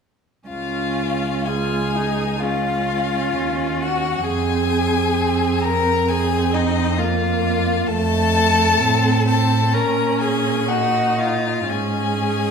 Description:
classical, slow romantic movement for string quartet; 64 BPM; 4/4; uneven beats, rubato; Db major; A4 = 440 Hz
clear violin; melody; 0.5-12.5 s; Eb5 to Bb5; -24 LUFS; left 6 dB
clear violin; second line; 0.5-12.5 s; Eb4 to Bb4; -22 LUFS; left 2 dB
rich viola; accompaniment; 0.5-12.5 s; A3 to F4; -23 LUFS; right 4 dB
rich cello; bass; 0.5-12.5 s; Db2 to Bb2; -23 LUFS; right 2 dB
wet recital hall reverb, RT60 1.6 s; heard from further back in the room; -17 LUFS; side -6 dB against mid
0.5-12.5 A section
0.5 Db; 4.3 Fm; 7.9 F; 9.8 Bbm; 11.7 Absus4
| 0.49 1.48 2.42 3.36 | 4.26 5.17 6.10 6.99 | 7.88 8.82 9.75 10.70 | 11.70

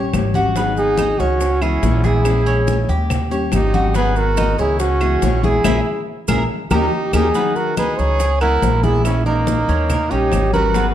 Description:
latin, Cuban son and guajira; 141 BPM; 4/4; straight; G# minor; A4 = 438 Hz
nylon-string guitar; accompaniment; 0.0-10.9 s; D#3 to G#4; -25 LUFS; left 4 dB
Cuban tres; arpeggios; 0.0-10.9 s; B3 to C#5; -24 LUFS; right 1 dB
upright bass; bass; 0.0-10.9 s; G#1 to D#2; -19 LUFS; equal
bongos; percussion; 0.1-10.9 s; -27 LUFS; left 8 dB
claves; percussion; 0.1-10.5 s; -32 LUFS; right 2 dB
congas; percussion; 0.1-10.9 s; -26 LUFS; left 2 dB
maracas; percussion; 0.1-10.9 s; -36 LUFS; right 6 dB
trumpet with bucket mute; melody; 0.8-10.9 s; D#4 to C#5; -20 LUFS; right 2 dB
bright trumpet; second line; 0.8-10.9 s; A#3 to G#4; -27 LUFS; right 2 dB
moderate large studio reverb, RT60 1.2 s; dark, warm production; -15 LUFS; side -11 dB against mid
0.0-7.4 A section; 7.4-10.9 B section
band accent 5.7-7.4; drum fill 6.7-7.4
0.0 D#7; 0.6 G#m7; 1.4 C#m7; 2.3 A#m7b5; 3.1 D#7; 4.0 G#m7; 4.8 C#m7; 5.7 A#m7b5; 6.5 D#7; 7.4 G#m7; 8.2 C#m7; 9.0 A#m7b5; 9.9 D#7
0.13 | 0.56 0.98 1.41 1.83 | 2.26 2.68 3.10 3.53 | 3.95 4.38 4.80 5.23 | 5.65 6.08 6.50 6.93 | 7.35 7.78 8.20 8.62 | 9.05 9.47 9.90 10.32 | 10.75

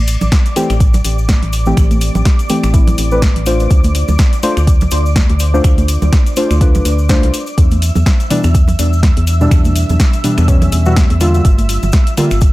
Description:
deep house; 124 BPM; 4/4; swing 57% on 16ths; A minor; A4 = 440 Hz
organ-like FM bass; bass; 0.0-12.5 s; G1 to E2; -14 LUFS; equal; sidechain pumping
analog string pad; texture; 0.0-12.5 s; D5 to E6; -26 LUFS; right 1 dB; ensemble chorus, sidechain pumping
deep house drum kit; drums; 0.1-12.5 s; finger snaps, hi-hat, snare drum; -21 LUFS; equal; overdrive
cabasa; percussion; 0.1-12.5 s; -30 LUFS; left 2 dB
congas; percussion; 0.2-12.3 s; -23 LUFS; right 3 dB
electronic kick drum; drums; 0.3-12.5 s; -11 LUFS; equal; overdrive
deep mellow chord stab; stabs; 0.6-12.3 s; B2 to C5; -17 LUFS; equal; chorus, sidechain pumping, digital delay
little or no reverb; -10 LUFS; side -18 dB against mid
0.0-12.5 A section
0.0 Am7; 3.7 Dm7; 7.6 Em7; 11.4 Gm7
0.32 0.80 1.29 | 1.77 2.25 2.74 3.22 | 3.71 4.19 4.67 5.16 | 5.64 6.13 6.61 7.09 | 7.58 8.06 8.55 9.03 | 9.51 10.00 10.48 10.96 | 11.45 11.93 12.42

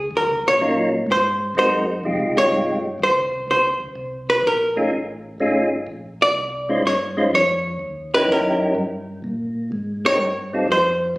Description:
soul jazz organ trio; 125 BPM; 4/4; swing 68% on 8ths; Ab major; A4 = 436 Hz
mellow tonewheel organ; bass; 0.0-11.2 s; G#1 to Bb2; -30 LUFS; equal; slow rotary speaker
archtop guitar, miked and amplified; accompaniment; 0.2-11.1 s; Bb4 to D5; -19 LUFS; equal
percussive tonewheel organ; melody; 0.6-10.7 s; C3 to C5; -21 LUFS; equal; slow rotary speaker
wet large studio reverb, RT60 1.2 s; recorded on a phone in the room, studio reverb; -18 LUFS; side -21 dB against mid
0.0-11.2 A section
hollow-body jazz guitar solo 0.0-11.2
0.1 Ebm7; 1.1 Ab7; 2.0 Dbmaj9#11; 4.0 Cm7; 4.9 F7alt; 5.9 Bbm11; 7.8 Eb7b9; 9.7 Abmaj7
| 0.11 0.59 1.08 1.56 | 2.04 2.52 3.00 3.48 | 3.96 4.44 4.92 5.40 | 5.88 6.36 6.84 7.32 | 7.80 8.29 8.77 9.24 | 9.72 10.21 10.69 11.17

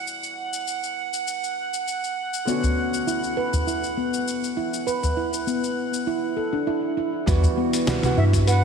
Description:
organic downtempo; 100 BPM; 4/4; swing 53% on 16ths; E dorian; A4 = 440 Hz
felt-muted upright piano; accompaniment; 0.0-8.6 s; D3 to F#4; -30 LUFS; right 6 dB; wide subtle chorus, sidechain pumping, low-pass filter, tape echo
drifting glass-harmonics texture; texture; 0.0-6.1 s; F#5; -30 LUFS; right 3 dB; chorus, built-in reverb
dusty soul sampler-style drum kit; drums; 0.1-8.6 s; cabasa, congas, hi-hat, snare drum; -31 LUFS; left 3 dB
handpan; arpeggios; 2.5-8.6 s; B3 to B4; -24 LUFS; equal; tape echo
udu; percussion; 2.6-8.4 s; -27 LUFS; equal
warm sub bass; bass; 7.3-8.6 s; E2 to G2; -18 LUFS; left 1 dB
electronic kick drum; drums; 7.3-8.4 s; -25 LUFS; equal
bright reedy bansuri; melody; 8.2-8.6 s; E5 to F#5; -26 LUFS; equal
wet lush hall reverb, RT60 2.4 s; dreamy mix soaked in reverb; -22 LUFS; side -6 dB against mid
0.0-7.3 A section; 7.3-8.6 B section
filter sweep on felt piano 0.0-7.3
0.0 Emadd9; 2.5 Dmaj7; 7.3 Emadd9
| 0.07 0.67 1.27 1.87 | 2.47 3.07 3.67 4.27 | 4.87 5.47 6.07 6.67 | 7.27 7.87 8.47

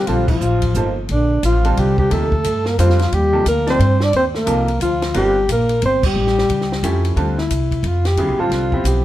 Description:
modal jazz; 178 BPM; 3/4; swing 63% on 8ths; G minor; A4 = 442 Hz
dark alto saxophone; melody; 0.0-9.0 s; D4 to D5; -19 LUFS; equal
breathy trombone; second line; 0.0-7.0 s; D3 to D4; -23 LUFS; left 2 dB
clear upright piano; accompaniment; 0.0-9.0 s; C3 to D5; -23 LUFS; right 2 dB
upright bass; bass; 0.1-9.0 s; G1 to G2; -18 LUFS; equal
compact cocktail drum kit; drums; 0.1-8.9 s; crash cymbal, hi-hat, kick drum, ride cymbal, snare drum; -26 LUFS; equal
moderate club reverb, RT60 0.8 s; -14 LUFS; side -14 dB against mid
0.0-7.2 A section; 7.2-9.0 B section
band accent 0.2, 6.0; alto saxophone solo 7.2-9.0
0.0 Gm9; 6.2 A7b13; 7.2 Dm11
| 0.08 0.41 0.75 | 1.09 1.43 1.77 | 2.11 2.45 2.78 | 3.12 3.46 3.80 | 4.13 4.47 4.81 | 5.15 5.48 5.82 | 6.16 6.49 6.83 | 7.17 7.50 7.84 | 8.18 8.51 8.85

